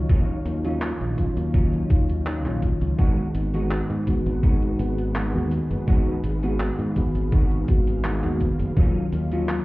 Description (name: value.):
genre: vaporwave.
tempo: 83 BPM.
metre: 4/4.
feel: straight.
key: unclear.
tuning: A4 = 440 Hz.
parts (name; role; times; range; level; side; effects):
FM electric piano with soft pad layer; accompaniment; 0.0-9.6 s; Eb3 to Gb4; -27 LUFS; equal; tremolo, wide subtle chorus, tape echo.
soft string machine; sustained chords; 0.0-9.6 s; Gb3 to Gb5; -36 LUFS; left 1 dB; ensemble chorus, vintage 12-bit sampler grit.
modern bright fingered electric bass; bass; 0.0-9.6 s; Gb1 to Ab2; -25 LUFS; equal; tube saturation.
semi-hollow electric guitar; riff; 0.1-9.6 s; Gb3 to Gb4; -31 LUFS; right 1 dB; ensemble chorus, tape echo.
detuned 8-bit digital drum machine; drums; 0.1-9.6 s; cabasa, handclaps, hi-hat; -34 LUFS; equal; none.
electronic kick drum; drums; 0.1-8.9 s; none; -21 LUFS; equal; none.
room: digital ambience.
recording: heard muffled through a wall, club reverb, EQ.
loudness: -20 LUFS.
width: side -20 dB against mid.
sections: 0.0-9.6 A section.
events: none.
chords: 0.0 Ebm9; 3.0 Abm7; 8.8 Ebm9.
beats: | 0.09 0.82 1.54 2.26 | 2.98 3.71 4.43 5.15 | 5.88 6.60 7.32 8.04 | 8.77 9.49.